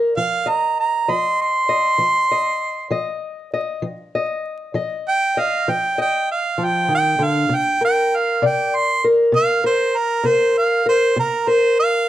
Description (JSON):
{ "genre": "acoustic country blues, solo or duo", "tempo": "65 BPM (dotted quarters)", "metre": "12/8", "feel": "straight", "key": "unclear", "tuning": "A4 = 439 Hz", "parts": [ { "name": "fingerpicked old ladder-braced acoustic guitar", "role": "accompaniment", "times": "0.0-12.1 s", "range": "C3 to Eb5", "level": "-20 LUFS", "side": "left 2 dB", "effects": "none" }, { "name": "clear harmonica", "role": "melody", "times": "0.2-12.1 s", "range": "Bb4 to C6", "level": "-18 LUFS", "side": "right 3 dB", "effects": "none" } ], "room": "wet studio reverb, RT60 0.8 s", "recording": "dark, warm production, vinyl crackle", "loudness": "-16 LUFS", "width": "side -13 dB against mid", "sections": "0.0-12.1 A section", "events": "none", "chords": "0.2 F5; 7.5 Csus2", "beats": "| 0.16 1.07 1.99 2.90 | 3.82 4.73 5.65 6.57 | 7.49 8.40 9.32 10.24 | 11.17 12.09" }